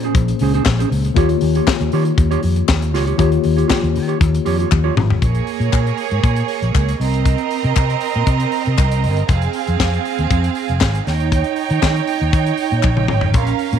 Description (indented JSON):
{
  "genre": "disco",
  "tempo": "118 BPM",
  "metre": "4/4",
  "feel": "straight",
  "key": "unclear",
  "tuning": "A4 = 441 Hz",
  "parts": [
    { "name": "mellow electric guitar", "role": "accompaniment", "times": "0.0-5.1 s", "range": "Db4 to Db5", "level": "-23 LUFS", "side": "right 11 dB", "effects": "spring reverb" },
    { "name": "tine electric piano", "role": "accompaniment", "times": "0.0-5.2 s", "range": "Bb2 to Db5", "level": "-21 LUFS", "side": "left 13 dB", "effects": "none" },
    { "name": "fingered electric bass", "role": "bass", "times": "0.0-13.8 s", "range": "F1 to Eb3", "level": "-18 LUFS", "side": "equal", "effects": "none" },
    { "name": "tight funk drum kit", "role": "drums", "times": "0.0-13.8 s", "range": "hi-hat, kick drum, snare drum, toms", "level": "-19 LUFS", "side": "left 2 dB", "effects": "none" },
    { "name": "group handclap", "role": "percussion", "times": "0.7-13.0 s", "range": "none", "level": "-29 LUFS", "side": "left 12 dB", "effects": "none" },
    { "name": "rich studio string section", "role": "second line", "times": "5.2-13.8 s", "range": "Bb3 to G5", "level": "-20 LUFS", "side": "right 11 dB", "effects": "none" }
  ],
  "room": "light reverb, small room ambience",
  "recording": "1960s-style stereo with parts hard left and right",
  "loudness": "-14 LUFS",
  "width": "side -8 dB against mid",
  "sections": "0.0-5.2 A section; 5.2-13.8 B section",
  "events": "drum fill 4.7-5.2, 12.8-13.3",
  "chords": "0.0 Bbm9; 1.2 Eb9; 5.2 Bbm7; 7.0 Cm7; 9.3 Fm; 11.1 Eb7(no3)"
}